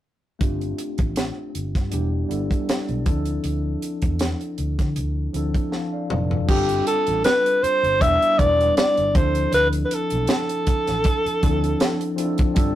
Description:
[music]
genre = lush 1970s-style soul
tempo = 79 BPM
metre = 4/4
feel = swing 54% on 16ths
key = D dorian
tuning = A4 = 440 Hz
[part]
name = tine electric piano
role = accompaniment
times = 0.4-12.8 s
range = F3 to A5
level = -27 LUFS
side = left 1 dB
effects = medium stereo tremolo
[part]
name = vintage muted fingered electric bass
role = bass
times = 0.4-12.8 s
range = E1 to D3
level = -26 LUFS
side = equal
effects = none
[part]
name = tight funk drum kit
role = drums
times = 0.4-12.8 s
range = crash cymbal, hi-hat, kick drum, snare drum, toms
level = -22 LUFS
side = equal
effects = none
[part]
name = warm alto saxophone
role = melody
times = 6.5-12.2 s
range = G4 to E5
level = -20 LUFS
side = equal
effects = none
[sound]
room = light reverb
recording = rough rehearsal-room recording, warm saturation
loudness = -19 LUFS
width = side -13 dB against mid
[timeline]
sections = 0.4-6.5 A section; 6.5-12.8 B section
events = drum fill 5.7-6.5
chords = 0.4 G7sus4; 1.9 Em7; 3.1 Dm7; 6.5 G7sus4; 8.0 Em7; 9.2 Dm7

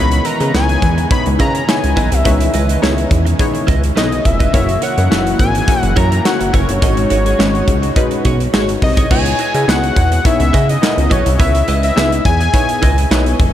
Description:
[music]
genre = early-eighties boogie funk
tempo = 105 BPM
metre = 4/4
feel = straight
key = C# dorian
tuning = A4 = 440 Hz
[part]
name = fat analog lead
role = melody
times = 0.0-13.4 s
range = C#5 to B5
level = -19 LUFS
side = left 2 dB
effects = diffuse ambient delay
[part]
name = funky polysynth comp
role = accompaniment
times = 0.0-13.4 s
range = G#3 to E5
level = -21 LUFS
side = left 2 dB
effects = chorus
[part]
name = chorused pulse-width pad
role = sustained chords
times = 0.0-9.1 s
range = C#3 to F#4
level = -25 LUFS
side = equal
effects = none
[part]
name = direct-recorded clean electric guitar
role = riff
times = 0.0-13.4 s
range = E4 to E5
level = -24 LUFS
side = right 4 dB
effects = analog chorus
[part]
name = chorused synth bass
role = bass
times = 0.0-13.5 s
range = E#1 to C#3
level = -16 LUFS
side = equal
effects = none
[part]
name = modern studio drum kit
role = drums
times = 0.1-13.5 s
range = crash cymbal, handclaps, hi-hat, kick drum, snare drum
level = -16 LUFS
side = equal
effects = none
[sound]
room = moderate huge ambient reverb, RT60 9.3 s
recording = dreamy mix soaked in reverb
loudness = -11 LUFS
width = side -11 dB against mid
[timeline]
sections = 0.0-9.1 A section; 9.1-13.5 A section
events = none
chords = 0.0 C#m9; 4.5 F#7; 6.8 G#7sus4; 9.1 C#m9

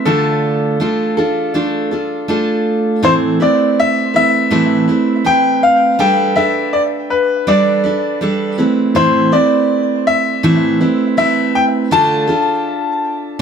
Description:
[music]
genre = pop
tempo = 81 BPM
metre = 4/4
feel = swing 60% on 16ths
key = A minor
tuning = A4 = 439 Hz
[part]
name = bright upright piano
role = melody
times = 0.0-13.4 s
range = A4 to A5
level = -15 LUFS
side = left 2 dB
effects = plate reverb, ping-pong delay
[part]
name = picked steel-string acoustic guitar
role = accompaniment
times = 0.0-13.4 s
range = A2 to B4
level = -15 LUFS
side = right 2 dB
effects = none
[sound]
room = moderate studio reverb, RT60 0.6 s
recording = none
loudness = -12 LUFS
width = side -7 dB against mid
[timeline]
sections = 0.0-3.0 A section; 3.0-13.4 B section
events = none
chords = 0.1 Dm; 3.0 Amadd9; 6.0 Gadd9; 8.6 Amadd9; 11.9 Dm

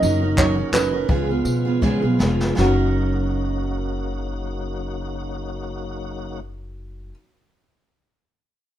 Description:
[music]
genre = acoustic pop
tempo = 78-87 BPM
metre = 4/4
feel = swing 55% on 16ths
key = F# major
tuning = A4 = 440 Hz
[part]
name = dark upright piano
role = melody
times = 0.0-7.1 s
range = F#4 to D#5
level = -26 LUFS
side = right 2 dB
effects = none
[part]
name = picked steel-string acoustic guitar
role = accompaniment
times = 0.0-7.2 s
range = C#3 to A#4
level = -23 LUFS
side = right 3 dB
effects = none
[part]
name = tonewheel organ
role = sustained chords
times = 0.0-6.4 s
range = A#2 to F#4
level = -31 LUFS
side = left 2 dB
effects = chorus vibrato, fast rotary speaker
[part]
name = upright bass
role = bass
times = 0.0-7.1 s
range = E#1 to B2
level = -25 LUFS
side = left 1 dB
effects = none
[part]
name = jazz brush drum kit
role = drums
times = 0.0-2.8 s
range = handclaps, kick drum, snare drum, tambourine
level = -24 LUFS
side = left 1 dB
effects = none
[sound]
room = light reverb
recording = minimal, uncompressed stereo recording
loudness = -19 LUFS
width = side -11 dB against mid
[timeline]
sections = 0.0-2.6 A section; 2.6-5.6 B section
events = slowing down 0.0-2.6; drum fill 1.8-2.6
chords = 0.0 F#6; 1.1 C#7; 2.6 F#6

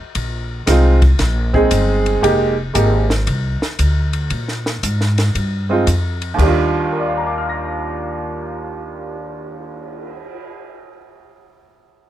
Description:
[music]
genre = jazz, small-group swing and bop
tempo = 116 BPM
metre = 4/4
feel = swing 67% on 8ths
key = Eb major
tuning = A4 = 440 Hz
[part]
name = upright bass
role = bass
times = 0.0-10.1 s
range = F1 to Bb2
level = -18 LUFS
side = equal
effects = none
[part]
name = compact cocktail drum kit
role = drums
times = 0.1-10.4 s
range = crash cymbal, cymbal swell, hi-hat, kick drum, ride cymbal, snare drum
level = -24 LUFS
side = left 1 dB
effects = none
[part]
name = clear upright piano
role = accompaniment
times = 0.7-11.2 s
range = Eb2 to Bb6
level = -18 LUFS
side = right 2 dB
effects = none
[sound]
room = little or no reverb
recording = close, detailed microphones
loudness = -15 LUFS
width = side -12 dB against mid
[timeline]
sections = 0.0-6.4 A section; 6.4-10.5 B section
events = none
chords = 0.2 Bb7sus4; 2.2 Fm11; 4.3 Bb7(no3); 6.4 Ebmaj7

